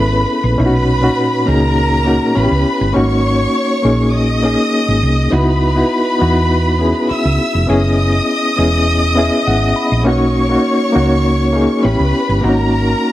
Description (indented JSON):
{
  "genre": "lush 1970s-style soul",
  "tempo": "101 BPM",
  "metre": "4/4",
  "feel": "straight",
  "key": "C# dorian",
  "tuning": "A4 = 440 Hz",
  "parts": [
    { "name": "warm studio violin section", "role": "second line", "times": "0.0-13.1 s", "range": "A#4 to E6", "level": "-18 LUFS", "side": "left 1 dB", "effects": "none" },
    { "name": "reed electric piano", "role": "accompaniment", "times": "0.0-13.1 s", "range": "A#2 to B5", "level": "-15 LUFS", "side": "left 1 dB", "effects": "fast tremolo" },
    { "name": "hollow-body short-scale fingered electric bass", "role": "bass", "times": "0.0-12.9 s", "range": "E1 to E2", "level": "-16 LUFS", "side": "right 1 dB", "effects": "none" }
  ],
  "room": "light reverb",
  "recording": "none",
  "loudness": "-12 LUFS",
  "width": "side -14 dB against mid",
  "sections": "0.0-13.1 A section",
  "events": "reed electric piano fill 8.9-10.1",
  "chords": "0.0 F#7sus4 (rootless); 0.6 Bmaj9; 2.4 A9; 3.0 G#9sus4; 5.3 C#m11; 7.7 F#7sus4; 10.1 Bmaj9; 11.8 A9; 12.4 G#9sus4",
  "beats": "| 0.58 1.18 1.77 2.36 | 2.95 3.54 4.14 4.73 | 5.32 5.91 6.51 7.10 | 7.69 8.29 8.88 9.47 | 10.06 10.66 11.25 11.84 | 12.44 13.03"
}